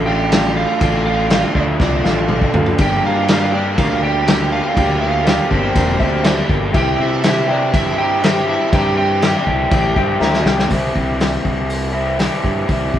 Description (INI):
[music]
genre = classic rock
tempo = 121 BPM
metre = 4/4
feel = straight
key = unclear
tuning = A4 = 441 Hz
[part]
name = raw garage guitar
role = riff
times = 0.0-13.0 s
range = G2 to G4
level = -18 LUFS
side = left 1 dB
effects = overdrive
[part]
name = fuzz fingered electric bass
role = bass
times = 0.0-13.0 s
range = E1 to C3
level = -21 LUFS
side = equal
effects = overdrive
[part]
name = electric slide guitar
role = melody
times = 0.1-9.4 s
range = C5 to G5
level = -23 LUFS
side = right 5 dB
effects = none
[part]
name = octave-fuzz lead guitar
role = second line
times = 0.1-9.4 s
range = C4 to G4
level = -26 LUFS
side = right 4 dB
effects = distortion
[part]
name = clear upright piano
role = accompaniment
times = 0.1-10.7 s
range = F4 to Bb5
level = -26 LUFS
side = left 3 dB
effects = none
[part]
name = vintage drum kit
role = drums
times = 0.3-13.0 s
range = crash cymbal, hi-hat, kick drum, snare drum, toms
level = -18 LUFS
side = equal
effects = none
[sound]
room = moderate large studio reverb, RT60 1.0 s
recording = band playing live in one room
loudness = -14 LUFS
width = side -11 dB against mid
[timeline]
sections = 0.0-10.7 A section; 10.7-13.0 B section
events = drum fill 1.8-2.8, 10.2-10.7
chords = 0.0 Dm; 2.8 Gm; 6.7 C